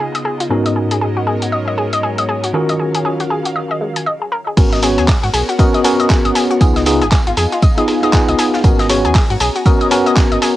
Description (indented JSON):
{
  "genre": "deep house",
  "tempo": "118 BPM",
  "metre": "4/4",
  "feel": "swing 60% on 16ths",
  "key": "G# dorian",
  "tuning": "A4 = 441 Hz",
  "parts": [
    { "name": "airy breathy pad", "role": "sustained chords", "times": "0.0-10.6 s", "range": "C#3 to A#5", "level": "-27 LUFS", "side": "equal", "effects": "chorus, sidechain pumping, cassette tape" },
    { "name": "analog pluck", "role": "arpeggios", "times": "0.0-10.5 s", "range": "G#3 to G#5", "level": "-19 LUFS", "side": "left 1 dB", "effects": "chorus, sidechain pumping, cassette tape, analog delay" },
    { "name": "tine electric piano", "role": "stabs", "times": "0.0-10.6 s", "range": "G#2 to C#5", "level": "-17 LUFS", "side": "equal", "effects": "overdrive, fast stereo tremolo, sidechain pumping, cassette tape, tape echo" },
    { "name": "dusty soul sampler-style drum kit", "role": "drums", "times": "0.1-10.5 s", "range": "crash cymbal, handclaps, hi-hat, shaker", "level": "-22 LUFS", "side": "equal", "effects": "small room ambience, cassette tape" },
    { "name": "round analog bass", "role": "bass", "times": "4.6-10.4 s", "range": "G#1 to G#2", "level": "-20 LUFS", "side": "equal", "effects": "tube saturation, sidechain pumping" },
    { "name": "electronic kick drum", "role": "drums", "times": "4.6-10.3 s", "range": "none", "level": "-12 LUFS", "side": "equal", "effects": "overdrive, small room ambience, cassette tape" },
    { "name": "tight metal drum kit", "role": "drums", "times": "4.6-10.6 s", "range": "hi-hat, snare drum, tambourine", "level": "-30 LUFS", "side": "equal", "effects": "sidechain pumping on hats, high-pass filter on hats, small room ambience, cassette tape, high-pass filter on snare, sidechain pumping on perc, high-pass filter on perc, high-pass filter on room" }
  ],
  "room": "moderate booth ambience, RT60 0.2 s",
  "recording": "home recording on cassette",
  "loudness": "-12 LUFS",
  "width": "side -15 dB against mid",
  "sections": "0.0-4.6 A section; 4.6-10.6 B section",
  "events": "filter sweep on tine electric piano 0.0-4.6; drop 4.6-10.6",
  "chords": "0.0 C#9; 0.5 G#m11; 2.5 D#m9; 4.6 G#m11; 6.6 C#9; 8.6 G#m11"
}